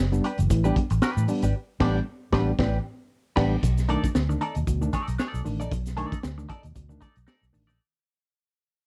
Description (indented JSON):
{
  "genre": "funk",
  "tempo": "115 BPM",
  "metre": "4/4",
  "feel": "swing 56% on 16ths",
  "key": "unclear",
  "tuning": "A4 = 438 Hz",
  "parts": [
    { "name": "clean electric guitar", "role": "accompaniment", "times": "0.0-7.8 s", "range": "D4 to D5", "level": "-35 LUFS", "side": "equal", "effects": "wah, lush chorus" },
    { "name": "vintage muted fingered electric bass", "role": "bass", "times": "0.0-7.8 s", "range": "F#1 to A2", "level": "-28 LUFS", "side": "equal", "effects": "none" },
    { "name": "tine electric piano", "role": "stabs", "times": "0.1-7.7 s", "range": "A2 to D4", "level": "-31 LUFS", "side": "equal", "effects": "overdrive" },
    { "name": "crunchy breakbeat drum kit", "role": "drums", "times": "0.1-7.8 s", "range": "crash cymbal, hi-hat, kick drum, snare drum", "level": "-30 LUFS", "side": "equal", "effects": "none" },
    { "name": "tube shaker", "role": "percussion", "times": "0.1-7.8 s", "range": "none", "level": "-50 LUFS", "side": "equal", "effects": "none" }
  ],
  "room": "studio reverb",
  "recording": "dry, close 1970s-style studio recording",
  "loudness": "-26 LUFS",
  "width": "mono",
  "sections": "0.0-3.6 A section; 3.6-7.8 B section",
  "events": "band accent 1.5-3.6; fade-out 3.6-7.8",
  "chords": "0.0 A9sus4; 3.6 B7#9"
}